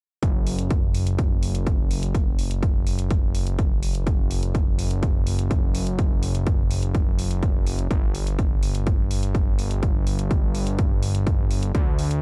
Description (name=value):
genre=melodic techno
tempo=125 BPM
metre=4/4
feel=straight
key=unclear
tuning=A4 = 438 Hz
part: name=fat analog bass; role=bass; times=0.2-12.2 s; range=F#1 to D2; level=-26 LUFS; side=equal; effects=sidechain pumping
part: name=electronic hi-hat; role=drums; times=0.2-12.2 s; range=none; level=-38 LUFS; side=equal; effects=none
part: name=electronic kick drum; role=drums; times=0.2-11.8 s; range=none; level=-24 LUFS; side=equal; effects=none
room=little or no reverb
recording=dark, warm production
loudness=-23 LUFS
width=mono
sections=0.2-12.2 A section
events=none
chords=none